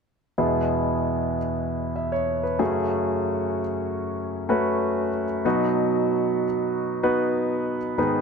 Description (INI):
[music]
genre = pop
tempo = 95 BPM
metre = 4/4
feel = straight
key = E major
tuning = A4 = 440 Hz
[part]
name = warm concert grand piano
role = accompaniment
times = 0.4-8.2 s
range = E2 to E5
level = -22 LUFS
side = equal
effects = none
[sound]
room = moderate plate reverb, RT60 3.4 s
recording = none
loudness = -22 LUFS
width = side -5 dB against mid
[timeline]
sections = 0.4-8.2 A section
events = none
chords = 0.4 E; 2.6 F#madd9; 5.4 B